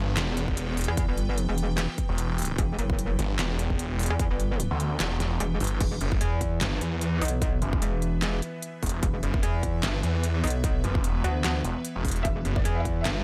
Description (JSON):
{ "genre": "heavy wobble dubstep", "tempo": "149 BPM", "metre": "4/4", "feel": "swing 55% on 16ths, half-time", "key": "E minor", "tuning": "A4 = 443 Hz", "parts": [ { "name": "evolving wavetable pad", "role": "sustained chords", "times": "0.0-13.2 s", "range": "E3 to G5", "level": "-40 LUFS", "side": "equal", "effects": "phaser, built-in reverb, sidechain pumping" }, { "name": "snarling distorted saw bass", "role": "bass", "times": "0.0-13.2 s", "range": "E1 to E2", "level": "-30 LUFS", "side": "equal", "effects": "distortion, overdrive" }, { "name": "dubstep drum kit", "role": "drums", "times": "0.2-13.1 s", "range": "crash cymbal, handclaps, hi-hat, snare drum", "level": "-34 LUFS", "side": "equal", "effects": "small room ambience" }, { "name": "electronic kick drum", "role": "drums", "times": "0.5-12.9 s", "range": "none", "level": "-30 LUFS", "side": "equal", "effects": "small room ambience" }, { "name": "metallic wobble bass", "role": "bass", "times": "0.9-13.0 s", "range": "E1 to E2", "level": "-29 LUFS", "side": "equal", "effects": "chorus, overdrive" }, { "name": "rich chamber violin section", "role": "melody", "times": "12.2-13.2 s", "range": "D5 to E5", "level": "-37 LUFS", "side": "equal", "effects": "tape echo" } ], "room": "digital ambience", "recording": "none", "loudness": "-27 LUFS", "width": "mono", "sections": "0.0-5.8 A section; 5.8-13.2 A section", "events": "drop 0.0-5.8, 5.8-13.2; kick drops out 5.0-5.8", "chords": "0.0 E5" }